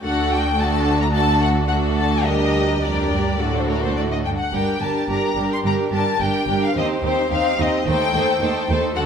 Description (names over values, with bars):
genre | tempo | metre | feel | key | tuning
quick classical-period movement for string orchestra | 108 BPM | 4/4 | straight | G minor | A4 = 440 Hz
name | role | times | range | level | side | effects
rich studio violin section | melody | 0.0-9.0 s | Bb4 to C6 | -23 LUFS | left 3 dB | none
rich studio violin section | second line | 0.0-9.1 s | F#4 to C5 | -24 LUFS | left 1 dB | none
rich studio viola section | accompaniment | 0.0-9.1 s | G3 to Eb4 | -24 LUFS | right 1 dB | none
clear studio double bass section | bass | 0.0-9.1 s | G1 to Eb2 | -25 LUFS | right 2 dB | none
rich studio cello section | bass | 0.0-9.1 s | D2 to Bb2 | -27 LUFS | right 3 dB | none
room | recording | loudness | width
wet recital hall reverb, RT60 1.5 s | none | -17 LUFS | side -7 dB against mid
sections
0.0-9.1 A section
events
none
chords
0.0 D; 2.2 Gm/D; 3.4 D; 4.5 Gm; 6.8 Cm/Eb; 7.9 Am7b5/Eb